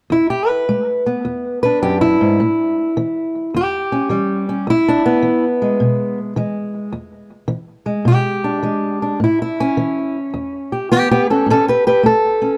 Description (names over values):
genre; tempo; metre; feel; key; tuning
acoustic country blues, solo or duo; 106 BPM; 4/4; swing 66% on 8ths; unclear; A4 = 439 Hz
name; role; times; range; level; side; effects
fingerpicked old ladder-braced acoustic guitar; solo; 0.1-12.6 s; E2 to B4; -17 LUFS; equal; none
room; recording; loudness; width
light reverb; close, detailed microphones; -17 LUFS; mono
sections
0.1-12.6 A section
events
none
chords
0.1 E7; 2.4 A7; 4.7 E7; 9.2 A7